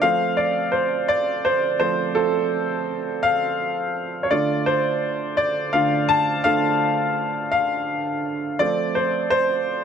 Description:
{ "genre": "pop", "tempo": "56 BPM (dotted quarters)", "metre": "6/8", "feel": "straight", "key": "unclear", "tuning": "A4 = 440 Hz", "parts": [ { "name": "clear upright piano", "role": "solo", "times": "0.0-9.8 s", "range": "D3 to A5", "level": "-19 LUFS", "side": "equal", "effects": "none" } ], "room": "moderate echo chamber reverb, RT60 1.9 s", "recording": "none", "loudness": "-19 LUFS", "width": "side -7 dB against mid", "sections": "0.0-9.8 A section", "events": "upright piano solo 0.0-9.8", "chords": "0.0 F; 4.3 Dm; 8.6 F", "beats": "| 0.02 1.09 | 2.17 3.24 | 4.31 5.38 | 6.46 7.53 | 8.60 9.67" }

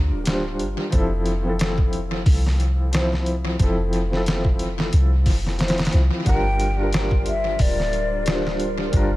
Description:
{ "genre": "trip hop", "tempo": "90 BPM", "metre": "4/4", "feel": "swing 56% on 16ths", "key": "unclear", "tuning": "A4 = 441 Hz", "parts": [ { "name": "felt-muted upright piano", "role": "accompaniment", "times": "0.0-9.2 s", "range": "F3 to C5", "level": "-25 LUFS", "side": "equal", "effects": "tremolo, tape echo" }, { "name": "soft 808-style bass", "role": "bass", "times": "0.0-9.2 s", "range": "D1 to D2", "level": "-22 LUFS", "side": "equal", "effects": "tube saturation" }, { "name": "trip hop sampler-style drum kit", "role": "drums", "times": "0.3-9.1 s", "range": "hi-hat, kick drum, snare drum", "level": "-23 LUFS", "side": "equal", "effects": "studio reverb, tape echo" }, { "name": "mellow hollow concert flute", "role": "melody", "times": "6.3-8.6 s", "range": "D5 to G5", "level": "-26 LUFS", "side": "left 2 dB", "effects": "vintage 12-bit sampler grit, tape echo" }, { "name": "warbly tape-like pad", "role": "sustained chords", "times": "7.1-9.2 s", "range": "G3 to D5", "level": "-32 LUFS", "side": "left 2 dB", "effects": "chorus, built-in reverb, phaser" }, { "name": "wind-like tuned noise texture", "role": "texture", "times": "6.9-9.2 s", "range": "C5", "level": "-36 LUFS", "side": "right 9 dB", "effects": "none" } ], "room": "digital ambience", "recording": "echo-heavy mix", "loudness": "-18 LUFS", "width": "side -17 dB against mid", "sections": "0.0-9.2 A section", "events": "none", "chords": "0.0 Gm7; 0.9 Fmaj7; 6.3 Gm7", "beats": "0.26 | 0.93 1.59 2.26 2.93 | 3.59 4.26 4.93 5.59 | 6.26 6.93 7.59 8.26 | 8.93" }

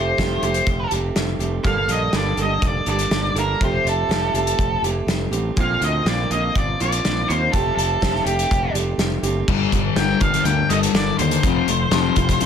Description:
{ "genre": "quiet-loud alternative rock", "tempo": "122 BPM", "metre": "4/4", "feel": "straight", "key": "G minor", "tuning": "A4 = 443 Hz", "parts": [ { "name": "octave-fuzz lead guitar", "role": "melody", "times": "0.0-12.5 s", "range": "G4 to G5", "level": "-22 LUFS", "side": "equal", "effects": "distortion, slapback echo" }, { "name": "picked steel-string acoustic guitar", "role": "arpeggios", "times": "0.0-12.5 s", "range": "G2 to A4", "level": "-26 LUFS", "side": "right 5 dB", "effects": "none" }, { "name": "growling fingered electric bass", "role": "bass", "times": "0.0-12.5 s", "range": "F1 to Eb2", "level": "-24 LUFS", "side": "equal", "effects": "overdrive" }, { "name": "loose indie drum kit", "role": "drums", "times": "0.2-12.5 s", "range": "crash cymbal, hi-hat, kick drum, snare drum", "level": "-23 LUFS", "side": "equal", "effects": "none" }, { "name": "fuzz guitar", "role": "riff", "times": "9.5-12.5 s", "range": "F2 to G3", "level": "-21 LUFS", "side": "left 12 dB", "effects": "distortion" } ], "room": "light reverb, studio reverb", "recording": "none", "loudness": "-17 LUFS", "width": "side -8 dB against mid", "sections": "0.0-9.5 A section; 9.5-12.5 B section", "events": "none", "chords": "0.0 Fadd9; 1.7 Gmadd9; 3.6 Fadd9; 5.6 Bbadd9; 7.5 Fadd9; 9.5 Gmadd9; 11.4 Fadd9", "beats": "0.18 0.67 1.16 | 1.65 2.14 2.63 3.12 | 3.61 4.11 4.59 5.08 | 5.57 6.06 6.55 7.04 | 7.53 8.02 8.51 9.00 | 9.49 9.97 10.46 10.95 | 11.44 11.93 12.41" }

